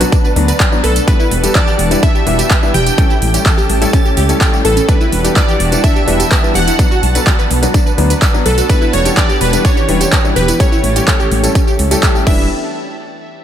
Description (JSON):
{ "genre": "progressive house", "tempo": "126 BPM", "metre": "4/4", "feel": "straight", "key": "E dorian", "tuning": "A4 = 439 Hz", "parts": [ { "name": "lush unison pad", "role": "sustained chords", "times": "0.0-12.5 s", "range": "E3 to G4", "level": "-22 LUFS", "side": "right 1 dB", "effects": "chorus, sidechain pumping" }, { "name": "wide unison pluck", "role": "arpeggios", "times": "0.0-12.5 s", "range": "C#4 to G5", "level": "-20 LUFS", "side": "right 1 dB", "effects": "cassette tape, sidechain pumping, ping-pong delay" }, { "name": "warm concert grand piano", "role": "stabs", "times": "0.0-12.4 s", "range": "F#3 to B4", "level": "-20 LUFS", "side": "left 3 dB", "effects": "sidechain pumping, ping-pong delay" }, { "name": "dark detuned saw bass", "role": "bass", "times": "0.0-12.5 s", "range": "E1 to D2", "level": "-16 LUFS", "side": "equal", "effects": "sidechain pumping" }, { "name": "big-room dance drum kit", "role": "drums", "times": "0.0-12.4 s", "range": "crash cymbal, handclaps, hi-hat, tambourine", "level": "-19 LUFS", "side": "right 2 dB", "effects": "overdrive" }, { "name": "backwards swelling texture", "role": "texture", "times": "0.0-12.5 s", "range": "A5", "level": "-28 LUFS", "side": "right 4 dB", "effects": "built-in reverb, sidechain pumping" }, { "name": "electronic kick drum", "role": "drums", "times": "0.1-12.4 s", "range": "none", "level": "-12 LUFS", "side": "equal", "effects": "overdrive" }, { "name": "plucky unison lead", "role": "melody", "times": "0.8-12.5 s", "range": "A4 to G5", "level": "-19 LUFS", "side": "equal", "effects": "sidechain pumping, diffuse ambient delay" }, { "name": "congas", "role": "percussion", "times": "1.3-11.4 s", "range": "none", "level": "-26 LUFS", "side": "left 4 dB", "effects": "none" } ], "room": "light reverb, digital ambience", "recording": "none", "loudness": "-10 LUFS", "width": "side -10 dB against mid", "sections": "0.0-12.5 A section", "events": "drop 0.0-12.5", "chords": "0.0 Bm; 1.1 Em7; 3.0 A7; 4.9 Em7; 6.8 Bm; 8.7 Em7; 10.6 A7; 12.3 Em7; 12.5 N.C." }